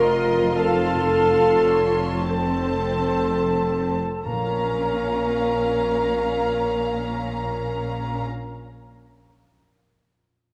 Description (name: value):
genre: classical, slow romantic movement for symphony orchestra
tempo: 29-37 BPM (dotted quarters)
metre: 12/8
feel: rubato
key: Bb minor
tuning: A4 = 443 Hz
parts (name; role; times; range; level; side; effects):
- rich studio violin section; melody; 0.0-8.2 s; A5 to C6; -38 LUFS; equal; none
- bright silver concert flute; second line; 0.0-8.2 s; A5 to Bb5; -34 LUFS; equal; none
- rich studio violin section; second line; 0.0-8.3 s; C5 to F5; -36 LUFS; equal; none
- rich studio viola section; accompaniment; 0.0-8.2 s; C4 to F4; -33 LUFS; equal; none
- mellow French horn section; sustained chords; 0.0-8.3 s; A4 to Bb4; -26 LUFS; equal; none
- concert harp; arpeggios; 0.0-8.6 s; F2 to F5; -39 LUFS; equal; none
- clear trumpet section; stabs; 0.0-8.2 s; A4 to Bb4; -32 LUFS; equal; none
- rich studio cello section; bass; 0.0-8.2 s; F2 to Bb2; -32 LUFS; equal; none
- rich studio double bass section; bass; 0.0-8.2 s; F1 to Bb1; -33 LUFS; equal; none
- timpani; percussion; 4.3-8.2 s; Bb2; -38 LUFS; equal; none
room: wet concert hall reverb, RT60 2.2 s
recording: none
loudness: -22 LUFS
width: mono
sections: 0.0-4.3 A section; 4.3-10.5 B section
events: slowing down 0.0-4.3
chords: 0.0 F7sus4; 0.6 F7; 4.3 Bbm